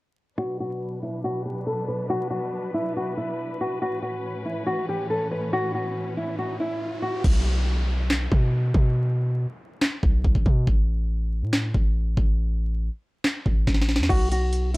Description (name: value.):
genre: hip hop, trap.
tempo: 140 BPM.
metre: 4/4.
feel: half-time.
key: B minor.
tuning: A4 = 443 Hz.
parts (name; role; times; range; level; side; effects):
nylon-string guitar; melody; 0.4-7.2, 14.1-14.8 s; E4 to B4; -27 LUFS; equal; low-pass filter.
dark symphonic string section; sustained chords; 0.4-7.2 s; A2 to B4; -32 LUFS; left 1 dB; low-pass filter.
riser and downlifter; sound effects; 5.8-10.7 s; none; -38 LUFS; right 1 dB; none.
hard-hitting 808-style bass; bass; 7.2-14.8 s; A1 to B2; -23 LUFS; equal; none.
trap drum kit; drums; 7.2-14.8 s; crash cymbal, handclaps, hi-hat, kick drum, snare drum; -22 LUFS; equal; none.
room: little or no reverb.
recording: dry, gritty hardware recording, vinyl crackle.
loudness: -22 LUFS.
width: side -21 dB against mid.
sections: 0.4-7.2 A section; 7.2-14.8 B section.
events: filter sweep 0.4-7.2; riser 5.8-7.2; hi-hats muted 7.2-14.1; drum fill 13.7-14.1.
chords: 0.4 Bm; 3.8 Aadd9; 7.2 N.C.; 10.7 A5; 14.1 B5.